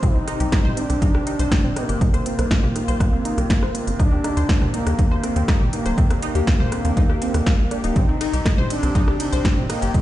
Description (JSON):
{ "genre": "melodic techno", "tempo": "121 BPM", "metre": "4/4", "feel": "straight", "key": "C minor", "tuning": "A4 = 437 Hz", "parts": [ { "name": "expressive synth lead", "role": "melody", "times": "0.0-10.0 s", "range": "Bb3 to Eb4", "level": "-26 LUFS", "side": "equal", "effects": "chorus, sidechain pumping, ping-pong delay" }, { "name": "warm analog pad", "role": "sustained chords", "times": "0.0-10.0 s", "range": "C3 to G4", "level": "-31 LUFS", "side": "equal", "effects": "chorus, tremolo, sidechain pumping" }, { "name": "tight sequenced synth", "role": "arpeggios", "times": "0.0-10.0 s", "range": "G3 to C5", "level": "-29 LUFS", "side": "equal", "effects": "chorus, phaser, sidechain pumping, ping-pong delay" }, { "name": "tight sequencer bass", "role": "bass", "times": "0.0-10.0 s", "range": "Eb1 to Eb2", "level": "-23 LUFS", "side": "equal", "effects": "sidechain pumping" }, { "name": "overtone-sweeping drone", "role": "drone", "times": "0.0-10.0 s", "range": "C3", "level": "-36 LUFS", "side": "equal", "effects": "chorus, built-in reverb, phaser, sidechain pumping" }, { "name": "electronic kick drum", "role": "drums", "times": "0.0-10.0 s", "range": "none", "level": "-20 LUFS", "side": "equal", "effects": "small room ambience" }, { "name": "techno drum kit", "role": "drums", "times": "0.0-10.0 s", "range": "hi-hat, ride cymbal, rim click, snare drum, toms", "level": "-26 LUFS", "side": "equal", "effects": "small room ambience" } ], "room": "little or no reverb", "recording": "played on a big sound system in a bare room, stone room reverb, nothing above 10.5 kHz", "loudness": "-17 LUFS", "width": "side -14 dB against mid", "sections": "0.0-10.0 A section", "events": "none", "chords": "0.0 Cm; 4.0 Ebmaj7; 8.0 Cm", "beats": "| 0.03 0.52 1.02 1.51 | 2.01 2.51 3.00 3.50 | 3.99 4.49 4.99 5.48 | 5.98 6.47 6.97 7.46 | 7.96 8.46 8.95 9.45 | 9.94" }